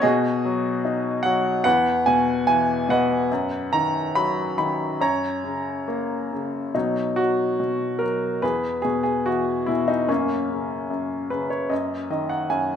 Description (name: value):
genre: classical, lyrical solo piano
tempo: 72 BPM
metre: 4/4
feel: uneven beats, rubato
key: B major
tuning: A4 = 440 Hz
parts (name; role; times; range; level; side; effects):
- clear upright piano; solo; 0.0-12.8 s; E2 to B5; -20 LUFS; left 1 dB; none
room: moderate recital hall reverb, RT60 1.3 s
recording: nothing above 10.8 kHz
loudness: -21 LUFS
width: side -8 dB against mid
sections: 0.0-6.7 A section; 6.7-12.8 B section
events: upright piano fill 10.9-12.8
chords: 0.0 B6; 1.7 E5; 3.3 B/F#; 5.0 F#; 6.7 B5; 8.4 E; 10.1 F#; 11.7 F#69